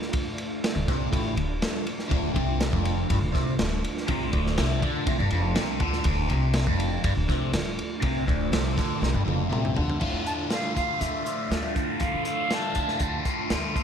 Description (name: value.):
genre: psychedelic rock.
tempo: 121 BPM.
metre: 4/4.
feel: straight.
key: D minor.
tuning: A4 = 440 Hz.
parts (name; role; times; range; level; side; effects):
string machine, cellos; sustained chords; 0.0-13.8 s; A3 to F4; -33 LUFS; right 3 dB; ensemble chorus.
crunchy breakbeat drum kit; drums; 0.0-13.8 s; crash cymbal, hi-hat, kick drum, ride cymbal, snare drum, toms; -28 LUFS; equal; none.
crunchy overdriven guitar; riff; 0.8-13.8 s; D2 to F4; -29 LUFS; left 1 dB; phaser.
upright bass; bass; 0.8-13.8 s; D1 to D3; -29 LUFS; equal; none.
silver concert flute; melody; 10.3-13.0 s; E5 to A5; -30 LUFS; right 1 dB; analog delay.
room: light reverb, studio ambience.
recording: none.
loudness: -24 LUFS.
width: side -8 dB against mid.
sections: 0.0-10.0 A section; 10.0-13.8 B section.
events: drum fill 9.0-10.0.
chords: 0.0 Dm.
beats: | 0.14 0.63 1.12 1.61 | 2.11 2.60 3.09 3.58 | 4.08 4.57 5.06 5.56 | 6.05 6.55 7.04 7.53 | 8.03 8.52 9.02 9.52 | 10.01 10.51 11.01 11.50 | 12.00 12.50 13.00 13.49.